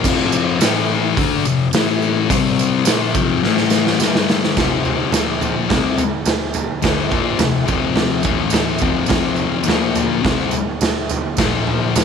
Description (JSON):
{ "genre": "garage rock duo or trio", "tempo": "106 BPM", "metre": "4/4", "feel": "straight", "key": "F major", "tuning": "A4 = 440 Hz", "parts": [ { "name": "thick fuzz guitar", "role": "riff", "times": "0.0-12.0 s", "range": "F2 to D4", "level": "-17 LUFS", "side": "left 8 dB", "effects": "distortion" }, { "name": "raw garage drum kit", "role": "drums", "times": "0.0-12.0 s", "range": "crash cymbal, hi-hat, kick drum, snare drum, toms", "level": "-18 LUFS", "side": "right 2 dB", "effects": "none" }, { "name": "tambourine", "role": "percussion", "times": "0.0-12.0 s", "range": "none", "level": "-28 LUFS", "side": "right 17 dB", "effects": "none" } ], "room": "light reverb, small room ambience", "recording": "1960s-style stereo with parts hard left and right", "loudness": "-15 LUFS", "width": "side -6 dB against mid", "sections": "0.0-4.6 A section; 4.6-12.0 B section", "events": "drum fill 3.4-4.6", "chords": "0.0 F5; 0.6 A5; 1.2 F; 1.7 A5; 2.3 C5; 2.9 F5; 3.4 A5; 4.0 G5; 4.6 F5; 5.1 Bb5; 5.7 F5; 8.3 A5; 8.8 F5; 9.7 Bb5; 10.2 C5; 11.4 Bb5" }